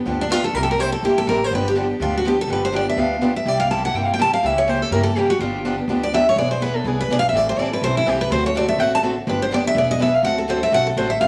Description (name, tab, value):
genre	acoustic string swing (jazz manouche)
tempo	248 BPM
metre	4/4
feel	swing 55% on 8ths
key	G mixolydian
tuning	A4 = 441 Hz
part	picked steel-string acoustic guitar	accompaniment	0.0-11.3 s	C3 to A4	-27 LUFS	equal	none
part	picked steel-string acoustic guitar	accompaniment	0.1-11.3 s	C3 to B4	-30 LUFS	equal	none
part	upright bass	bass	0.1-11.3 s	E1 to G2	-30 LUFS	equal	none
part	picked steel-string acoustic guitar	melody	0.2-11.3 s	D4 to A5	-21 LUFS	equal	none
room	wet studio reverb, RT60 0.9 s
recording	none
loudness	-20 LUFS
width	mono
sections	0.0-11.2 A section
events	steel-string acoustic guitar solo 0.0-11.3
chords	0.0 G7; 0.5 C7; 1.5 G7; 3.5 C7; 4.4 C#dim7; 5.4 G7; 6.4 E7; 7.3 Am7; 8.3 D7; 9.3 G7; 9.8 E7; 10.2 D7